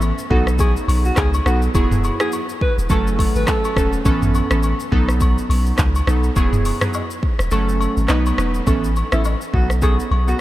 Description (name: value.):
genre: afrobeats.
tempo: 104 BPM.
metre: 4/4.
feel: swing 58% on 16ths.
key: unclear.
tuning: A4 = 440 Hz.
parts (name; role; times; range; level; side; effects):
glassy digital keys; accompaniment; 0.0-10.4 s; E3 to B4; -22 LUFS; right 2 dB; chorus.
punchy sub bass; bass; 0.0-10.3 s; E1 to C#2; -19 LUFS; equal; none.
afro-pop drum kit; drums; 0.0-10.4 s; handclaps, hi-hat, kick drum, rim click, shaker, toms; -21 LUFS; equal; none.
agogo bells and woodblock; percussion; 0.0-10.3 s; none; -29 LUFS; left 4 dB; none.
warm alto saxophone; melody; 0.3-3.9, 9.1-10.4 s; E4 to B4; -26 LUFS; equal; analog delay.
room: light reverb.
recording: none.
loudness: -16 LUFS.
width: side -15 dB against mid.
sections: 0.0-8.7 A section; 8.7-10.4 B section.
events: kick muted 7.5-8.7.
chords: 0.3 B7; 1.7 Eadd9; 2.9 F#m; 4.1 Aadd9; 4.9 B7; 6.4 Eadd9; 7.5 F#m; 8.1 B; 8.7 Aadd9; 9.5 B7.